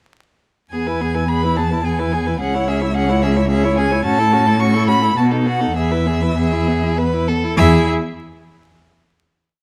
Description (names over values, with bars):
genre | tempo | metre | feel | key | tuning
quick classical-period movement for string quartet | 98-110 BPM | 3/4 | rubato | E major | A4 = 440 Hz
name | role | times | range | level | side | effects
rich violin | melody | 0.7-7.9 s | E5 to C#6 | -24 LUFS | equal | none
rich violin | second line | 0.7-7.9 s | F#4 to C#5 | -25 LUFS | equal | none
rich viola | accompaniment | 0.7-7.9 s | B3 to E4 | -24 LUFS | equal | none
rich cello | bass | 0.7-7.9 s | C#2 to B2 | -20 LUFS | equal | none
room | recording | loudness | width
light reverb | vinyl crackle | -17 LUFS | mono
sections
0.7-7.6 A section; 7.6-9.3 final chord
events
slowing down 3.2-7.6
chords
0.7 E; 2.4 C#m; 4.1 F#m7/A; 5.2 B7; 5.8 E; 7.6 N.C.